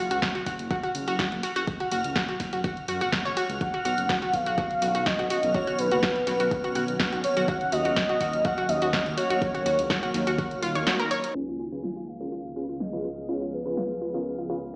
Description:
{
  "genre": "progressive house",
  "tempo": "124 BPM",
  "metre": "4/4",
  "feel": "straight",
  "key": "unclear",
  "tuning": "A4 = 439 Hz",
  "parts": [
    { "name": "analog pluck", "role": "arpeggios", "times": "0.0-14.6 s", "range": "F#3 to C#5", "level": "-29 LUFS", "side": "equal", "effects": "chorus, sidechain pumping, dub echo" },
    { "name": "dark detuned saw bass", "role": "bass", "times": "0.0-14.8 s", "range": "D#1 to F#2", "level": "-34 LUFS", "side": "equal", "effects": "sidechain pumping" },
    { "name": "backwards swelling texture", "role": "texture", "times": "0.1-14.8 s", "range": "E#6", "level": "-39 LUFS", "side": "equal", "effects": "built-in reverb, sidechain pumping" },
    { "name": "deep house drum kit", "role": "drums", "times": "0.1-14.1 s", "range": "crash cymbal, hi-hat, snare drum", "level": "-30 LUFS", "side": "equal", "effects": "sidechain pumping on hats, low-pass filter on hats, low-pass filter on snare, sidechain pumping on cymbals, low-pass filter on cymbals, low-pass filter on room" },
    { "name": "electronic kick drum", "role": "drums", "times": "0.2-10.5 s", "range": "none", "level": "-31 LUFS", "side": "equal", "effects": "none" },
    { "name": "warm velvety synth lead", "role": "melody", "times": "3.6-14.5 s", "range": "B4 to G#5", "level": "-27 LUFS", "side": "equal", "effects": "chorus, dub echo" },
    { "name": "shimmering ambient pad", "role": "sustained chords", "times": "4.2-14.8 s", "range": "C#3 to G#4", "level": "-34 LUFS", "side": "equal", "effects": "chorus, built-in reverb, sidechain pumping" },
    { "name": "supersaw stab", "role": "stabs", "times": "11.3-14.6 s", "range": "C#3 to B4", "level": "-34 LUFS", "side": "equal", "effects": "sidechain pumping, low-pass filter" }
  ],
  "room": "moderate lush hall reverb, RT60 1.7 s, digital ambience",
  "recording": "played on a big sound system in a bare room, stone room reverb, low-pass filter, small speaker sound",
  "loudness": "-24 LUFS",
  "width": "side -27 dB against mid",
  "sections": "0.0-11.4 A section; 11.4-14.8 B section",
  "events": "filter sweep on synth pluck 11.4-14.8; filter sweep on supersaw synth 11.4-14.8; filter sweep 11.4-14.8",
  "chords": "0.0 F#5; 3.6 Badd9; 7.5 D#m7; 11.4 C#7"
}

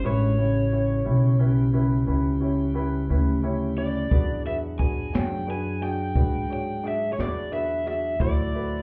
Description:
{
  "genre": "slow blues",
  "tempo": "59 BPM (dotted quarters)",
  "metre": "12/8",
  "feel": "straight",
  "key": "unclear",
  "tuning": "A4 = 440 Hz",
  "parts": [
    { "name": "crunchy overdriven guitar", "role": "melody", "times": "0.0-8.8 s", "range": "C#5 to G#5", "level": "-32 LUFS", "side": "equal", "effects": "none" },
    { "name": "warm baby grand piano", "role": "accompaniment", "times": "0.0-8.8 s", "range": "C#4 to D5", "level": "-31 LUFS", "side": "equal", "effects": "none" },
    { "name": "tonewheel organ", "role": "sustained chords", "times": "0.0-8.8 s", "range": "C#3 to C5", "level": "-35 LUFS", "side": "equal", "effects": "slow rotary speaker" },
    { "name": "upright bass", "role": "bass", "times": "0.0-8.8 s", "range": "A1 to G#2", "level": "-28 LUFS", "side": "equal", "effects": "none" },
    { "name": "jazz brush drum kit", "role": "drums", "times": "4.1-8.7 s", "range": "hi-hat, kick drum, snare drum", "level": "-27 LUFS", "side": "equal", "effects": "none" }
  ],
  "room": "light reverb",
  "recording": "heard muffled through a wall, club reverb, EQ",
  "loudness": "-24 LUFS",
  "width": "mono",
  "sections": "0.0-8.8 A section",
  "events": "none",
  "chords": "0.0 A9; 4.1 E9; 8.2 D9"
}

